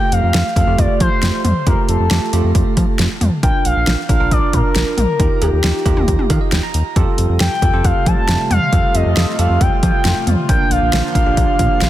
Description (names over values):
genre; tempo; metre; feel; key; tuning
synth-pop; 136 BPM; 4/4; straight; unclear; A4 = 440 Hz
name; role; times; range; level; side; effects
expressive portamento lead; melody; 0.0-11.9 s; G4 to A5; -20 LUFS; left 2 dB; chorus, tape echo, shimmer reverb
bell-like tine electric piano; accompaniment; 0.0-11.9 s; A3 to Bb5; -23 LUFS; right 8 dB; shimmer reverb
round analog bass; bass; 0.1-11.9 s; Bb1 to F3; -17 LUFS; equal; none
deep house drum kit; drums; 0.1-11.9 s; cowbell, hi-hat, kick drum, snare drum, toms; -17 LUFS; equal; overdrive
chorused pulse-width pad; sustained chords; 7.0-11.9 s; C3 to F4; -25 LUFS; equal; shimmer reverb
room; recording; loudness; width
light reverb, digital ambience; dense, heavily limited modern master; -13 LUFS; side -13 dB against mid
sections
0.0-11.9 A section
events
tine electric piano fill 6.1-7.0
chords
0.0 Fadd9; 3.4 Bb; 5.2 Ebadd9; 7.0 Fadd9; 10.5 Bb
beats
0.34 0.79 1.23 | 1.67 2.11 2.55 2.99 | 3.43 3.87 4.31 4.75 | 5.20 5.64 6.08 6.52 | 6.96 7.40 7.84 8.29 | 8.73 9.17 9.61 10.05 | 10.49 10.93 11.37 11.81